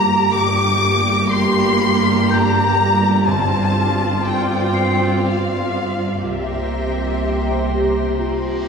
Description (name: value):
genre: cinematic, suspense film score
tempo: 61 BPM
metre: 3/4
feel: straight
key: G minor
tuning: A4 = 439 Hz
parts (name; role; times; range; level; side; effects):
- warm chamber violin section; melody; 0.0-8.2 s; E5 to D6; -22 LUFS; left 3 dB; none
- rich chamber violin section; second line; 0.0-8.2 s; E5 to D6; -23 LUFS; left 2 dB; none
- warm chamber viola section; accompaniment; 0.0-8.7 s; Bb3 to G4; -22 LUFS; right 2 dB; none
- soft additive organ-like pad; sustained chords; 0.0-8.7 s; F4 to D6; -27 LUFS; left 2 dB; ensemble chorus, built-in reverb
- clear studio double bass section; bass; 0.0-8.7 s; G1 to C2; -23 LUFS; right 1 dB; none
- warm studio cello section; bass; 0.0-8.7 s; G2 to C3; -23 LUFS; right 2 dB; none
- large celesta; texture; 0.0-8.7 s; G6 to C7; -28 LUFS; left 2 dB; none
- timpani; percussion; 3.3-4.7 s; G2; -27 LUFS; equal; none
- reverse cymbal; sound effects; 8.2-8.7 s; none; -42 LUFS; equal; none
- dark clarinet; second line; 7.7-8.7 s; F4 to G4; -21 LUFS; left 1 dB; none
room: wet concert hall reverb, RT60 1.7 s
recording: heard from further back in the room, lossy compression artefacts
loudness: -15 LUFS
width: side -5 dB against mid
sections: 0.0-8.7 A section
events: reverse cymbal 8.2-8.7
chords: 0.0 Gm; 3.3 Dm7/G; 6.2 C7